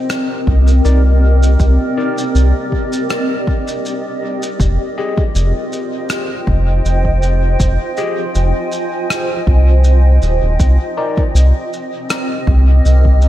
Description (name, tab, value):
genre	ambient dub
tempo	80 BPM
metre	4/4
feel	swing 54% on 16ths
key	F dorian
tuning	A4 = 441 Hz
part	granular cloud pad	sustained chords	0.0-13.3 s	C4 to Ab5	-19 LUFS	equal	built-in reverb, vintage 12-bit sampler grit
part	shaker and rim click	drums	0.1-13.3 s	none	-24 LUFS	left 1 dB	dub echo
part	round analog bass	bass	0.5-13.3 s	Eb1 to C2	-10 LUFS	equal	tube saturation
part	electronic kick drum	drums	0.5-13.2 s	none	-17 LUFS	equal	overdrive
part	overdriven tine electric piano	stabs	0.8-11.2 s	Eb4 to Eb5	-26 LUFS	left 4 dB	phaser, dub echo
room	light reverb, studio ambience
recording	none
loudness	-12 LUFS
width	side -13 dB against mid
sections	0.0-4.6 A section; 4.6-13.3 B section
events	none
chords	0.0 Cm9; 4.6 Fm9; 10.6 Cm9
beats	0.10 0.85 | 1.60 2.35 3.10 3.85 | 4.60 5.35 6.10 6.85 | 7.60 8.35 9.10 9.85 | 10.60 11.35 12.10 12.85